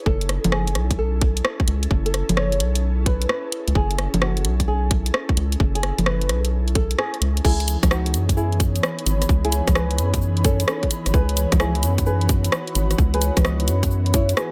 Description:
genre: UK garage, two-step garage.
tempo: 130 BPM.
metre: 4/4.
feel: swing 66% on 16ths.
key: C# minor.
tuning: A4 = 443 Hz.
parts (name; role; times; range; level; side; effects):
ethereal airy pad; sustained chords; 0.0-14.5 s; B3 to A4; -37 LUFS; equal; ensemble chorus, built-in reverb, sidechain pumping.
flamenco guitar; melody; 0.1-14.5 s; C#4 to D#5; -30 LUFS; equal; tape echo.
rubbery square bass; bass; 0.1-14.3 s; F#1 to F#2; -24 LUFS; equal; sidechain pumping.
electronic kick drum; drums; 0.1-14.3 s; none; -22 LUFS; equal; overdrive.
garage drum kit; drums; 0.2-14.5 s; cabasa, congas, crash cymbal, hi-hat, rim click; -26 LUFS; equal; overdrive.
airy breathy pad; texture; 7.7-14.5 s; E3 to B5; -32 LUFS; equal; chorus, sidechain pumping.
room: digital ambience.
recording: none.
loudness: -21 LUFS.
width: mono.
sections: 0.0-7.4 A section; 7.4-14.5 B section.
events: band accent 7.0; drop 7.4-14.5.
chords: 0.1 F#m7; 7.4 C#m7.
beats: | 0.06 0.52 0.99 1.45 | 1.91 2.37 2.83 3.29 | 3.75 4.22 4.68 5.14 | 5.60 6.06 6.52 6.99 | 7.45 7.91 8.37 8.83 | 9.29 9.76 10.22 10.68 | 11.14 11.60 12.06 12.52 | 12.99 13.45 13.91 14.37.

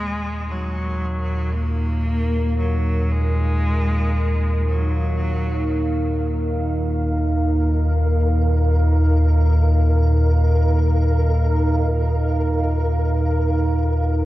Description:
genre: dark ambient drone.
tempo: free time.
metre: none.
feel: none.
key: Eb minor.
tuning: A4 = 440 Hz.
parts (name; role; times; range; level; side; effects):
clear cello; melody; 0.0-6.2 s; Gb3 to Bb3; -28 LUFS; equal; diffuse ambient delay.
deep dark ambient pad; sustained chords; 0.6-14.3 s; Eb4 to F5; -25 LUFS; right 1 dB; chorus, built-in reverb.
deep rumbling drone; drone; 0.0-14.3 s; Eb2 to Bb2; -18 LUFS; equal; built-in reverb.
flickering grainy texture; texture; 7.1-14.3 s; Bb4; -31 LUFS; right 3 dB; built-in reverb.
room: wet cathedral reverb, RT60 5.1 s.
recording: worn, warbling old tape, cassette tape, warbly pitch drift.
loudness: -17 LUFS.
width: side -16 dB against mid.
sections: 0.0-14.3 A section.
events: none.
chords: 0.0 Ebm7.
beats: free time.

